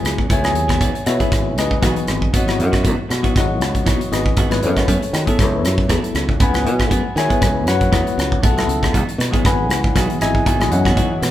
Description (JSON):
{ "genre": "electric jazz fusion", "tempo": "118 BPM", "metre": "4/4", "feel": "swing 55% on 16ths", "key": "C# minor", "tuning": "A4 = 440 Hz", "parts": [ { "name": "bell-like tine electric piano", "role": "accompaniment", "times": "0.0-11.3 s", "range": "E3 to B5", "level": "-20 LUFS", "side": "left 2 dB", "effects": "fast stereo tremolo" }, { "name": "clean electric guitar", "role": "stabs", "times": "0.0-11.3 s", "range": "E3 to G#4", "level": "-27 LUFS", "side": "right 2 dB", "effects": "none" }, { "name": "fingered electric bass", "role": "bass", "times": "0.0-11.3 s", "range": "G#1 to D#3", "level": "-21 LUFS", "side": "equal", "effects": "none" }, { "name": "modern studio drum kit", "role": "drums", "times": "0.1-11.3 s", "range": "hi-hat, kick drum, rim click", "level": "-19 LUFS", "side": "equal", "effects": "none" }, { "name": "sweeping resonant pad", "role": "sustained chords", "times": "9.5-11.3 s", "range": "E3 to E4", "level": "-27 LUFS", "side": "right 2 dB", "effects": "chorus" } ], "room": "moderate large studio reverb, RT60 1.4 s", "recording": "band playing live in one room", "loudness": "-15 LUFS", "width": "side -13 dB against mid", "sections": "0.0-11.3 A section", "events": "none", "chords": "0.0 F#m11; 0.8 C#m11; 4.9 F#m11; 8.9 C#m11", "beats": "0.30 | 0.81 1.32 1.83 2.34 | 2.85 3.36 3.86 4.37 | 4.88 5.39 5.90 6.40 | 6.91 7.42 7.93 8.43 | 8.94 9.45 9.96 10.46 | 10.97" }